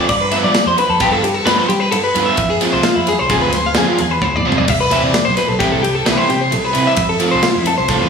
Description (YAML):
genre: math rock and midwest emo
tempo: 131 BPM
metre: 5/4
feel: straight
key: C major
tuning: A4 = 441 Hz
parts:
  - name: twelve-string electric guitar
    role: arpeggios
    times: 0.0-8.1 s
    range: E4 to F5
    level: -16 LUFS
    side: left 2 dB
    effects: slapback echo
  - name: overdriven electric guitar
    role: riff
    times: 0.0-8.1 s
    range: D3 to F4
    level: -19 LUFS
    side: right 4 dB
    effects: slapback echo
  - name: vintage muted fingered electric bass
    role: bass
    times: 0.1-8.1 s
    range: B1 to G3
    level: -22 LUFS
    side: right 1 dB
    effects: none
  - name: modern studio drum kit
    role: drums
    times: 0.1-8.0 s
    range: crash cymbal, kick drum, ride cymbal, snare drum, toms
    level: -19 LUFS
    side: left 1 dB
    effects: none
room: wet lush hall reverb, RT60 1.7 s, small room ambience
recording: big arena sound, studio reverb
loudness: -12 LUFS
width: side -6 dB against mid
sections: 0.0-8.1 A section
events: drum fill 4.2-4.7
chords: 0.1 G7; 2.4 Fm; 4.7 Cmaj7; 7.0 Fmaj7